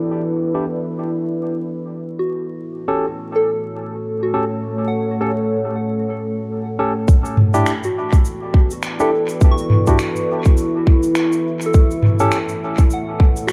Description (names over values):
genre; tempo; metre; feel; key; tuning
ambient dub; 103 BPM; 4/4; swing 58% on 16ths; unclear; A4 = 441 Hz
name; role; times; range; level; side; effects
deep dark ambient pad; sustained chords; 0.0-13.5 s; A3 to D5; -25 LUFS; equal; chorus, built-in reverb, vintage 12-bit sampler grit
soft synth bell; arpeggios; 0.0-13.5 s; F#4 to C#6; -27 LUFS; equal; chorus, phaser, low-pass filter, dub echo
barky tine electric piano; stabs; 0.5-12.4 s; C#4 to A4; -26 LUFS; equal; dub echo
electronic kick drum; drums; 7.1-13.3 s; none; -14 LUFS; equal; none
organic electronic drum kit; drums; 7.1-13.5 s; cabasa, finger snaps, toms; -22 LUFS; equal; dub echo
room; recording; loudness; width
moderate spring reverb, RT60 2.9 s; echo-heavy mix, vinyl crackle; -18 LUFS; mono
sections
0.0-7.1 A section; 7.1-13.5 B section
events
filter sweep on synth bell 0.0-7.1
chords
0.0 E7(no3); 2.4 A; 7.1 E7(no3); 11.7 A